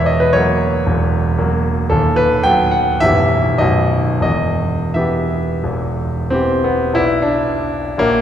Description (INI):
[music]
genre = classical, romantic character piece for solo piano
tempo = 84-118 BPM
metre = 4/4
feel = rubato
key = E minor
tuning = A4 = 439 Hz
[part]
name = clear concert grand piano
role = solo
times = 0.0-8.2 s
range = B0 to G5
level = -14 LUFS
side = equal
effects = none
[sound]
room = wet concert hall reverb, RT60 2.4 s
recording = heard from further back in the room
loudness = -14 LUFS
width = side -10 dB against mid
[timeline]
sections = 0.0-7.0 A section; 7.0-8.2 B section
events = none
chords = 0.0 F#7/E; 1.9 B/D#; 3.0 Em/B; 3.6 B; 4.2 Em; 7.0 Bm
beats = 0.35 0.87 1.39 | 1.91 2.44 3.01 3.60 | 4.24 4.95 5.64 6.32 | 6.97 7.49 8.01